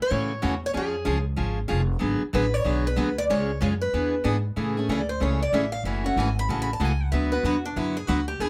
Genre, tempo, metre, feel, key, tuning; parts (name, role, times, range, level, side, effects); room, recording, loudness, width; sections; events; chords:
acoustic string swing (jazz manouche); 188 BPM; 4/4; swing 61% on 8ths; A major from 4.6 s; A4 = 440 Hz
picked acoustic archtop guitar; melody; 0.0-8.5 s; D4 to B5; -30 LUFS; equal
upright bass; bass; 0.0-8.5 s; E#1 to A2; -30 LUFS; equal
picked steel-string acoustic guitar; accompaniment; 0.1-8.5 s; C#3 to B4; -29 LUFS; equal
light reverb; -25 LUFS; mono
0.0-4.6 A section; 4.6-8.5 B section
steel-string acoustic guitar solo 4.6-8.5
0.0 F#m7; 0.7 C#; 2.0 G#m7b5; 3.3 C#; 3.9 E7; 4.6 Amaj7; 5.8 F#m7; 7.1 D6